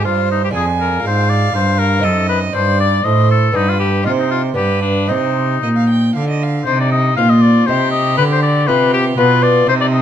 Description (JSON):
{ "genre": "classical, baroque-style sonata movement with continuo", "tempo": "119 BPM", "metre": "3/4", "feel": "straight", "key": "C minor", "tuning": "A4 = 440 Hz", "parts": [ { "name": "bright oboe", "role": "melody", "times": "0.0-10.0 s", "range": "D4 to F5", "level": "-17 LUFS", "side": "left 6 dB", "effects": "none" }, { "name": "warm violin", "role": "second line", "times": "0.0-10.0 s", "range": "Eb4 to Ab5", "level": "-21 LUFS", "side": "right 8 dB", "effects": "none" }, { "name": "lute", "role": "accompaniment", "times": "0.0-10.0 s", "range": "F2 to F4", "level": "-22 LUFS", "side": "left 1 dB", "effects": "none" }, { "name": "rich cello", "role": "bass", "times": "0.0-10.0 s", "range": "F2 to D3", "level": "-16 LUFS", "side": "right 1 dB", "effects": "none" } ], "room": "light reverb", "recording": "dark, warm production", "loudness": "-12 LUFS", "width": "side -10 dB against mid", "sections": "0.0-6.7 A section; 6.7-10.0 B section", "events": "none", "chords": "0.0 F5; 0.5 Ddim/F; 2.0 F#dim7; 3.6 G; 4.1 Cm; 4.6 G; 5.1 Cm; 8.2 G7" }